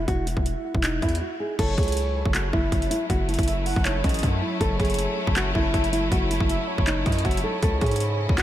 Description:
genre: hip hop, trap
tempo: 159 BPM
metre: 4/4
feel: half-time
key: F# dorian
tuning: A4 = 440 Hz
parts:
  - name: nylon-string guitar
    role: melody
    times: 0.0-8.4 s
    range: C#4 to A4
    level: -28 LUFS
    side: equal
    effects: analog delay
  - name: distorted 808-style bass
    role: bass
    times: 0.0-8.4 s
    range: E1 to G#2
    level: -26 LUFS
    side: equal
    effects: distortion
  - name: trap drum kit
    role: drums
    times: 0.1-8.4 s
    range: crash cymbal, handclaps, hi-hat, kick drum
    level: -25 LUFS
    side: equal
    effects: none
  - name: breathy flute-like synth lead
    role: second line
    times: 1.6-8.3 s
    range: C#5 to F#5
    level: -33 LUFS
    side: right 5 dB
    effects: chorus, analog delay
  - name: clear symphonic string section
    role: sustained chords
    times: 1.6-8.4 s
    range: C#3 to D#5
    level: -30 LUFS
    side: left 2 dB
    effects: none
room: light reverb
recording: none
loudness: -21 LUFS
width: side -12 dB against mid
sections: 0.0-1.6 A section; 1.6-8.4 B section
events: break 1.2-1.6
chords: 0.0 N.C.; 1.6 F#m7; 7.6 C#madd9

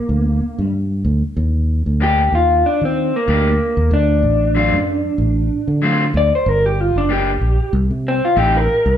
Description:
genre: straight-eighth soul blues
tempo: 94 BPM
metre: 4/4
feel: swing 55% on 16ths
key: G harmonic minor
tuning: A4 = 440 Hz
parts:
  - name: electric guitar through a small old amp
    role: melody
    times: 0.0-9.0 s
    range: Bb3 to D5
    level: -17 LUFS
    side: equal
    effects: harmonic tremolo
  - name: fingered electric bass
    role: bass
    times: 0.1-9.0 s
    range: F#1 to Eb3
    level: -17 LUFS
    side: equal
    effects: none
  - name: electric guitar at the edge of break-up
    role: stabs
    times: 2.0-8.6 s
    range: F#3 to G4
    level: -21 LUFS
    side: left 2 dB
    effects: none
room: moderate large studio reverb, RT60 1.2 s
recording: band playing live in one room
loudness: -14 LUFS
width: side -10 dB against mid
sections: 0.0-9.0 A section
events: clean electric guitar solo 0.0-9.0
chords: 0.0 Gm; 1.4 Ebmaj7; 3.9 D7#9; 6.5 Gm; 7.7 Cm

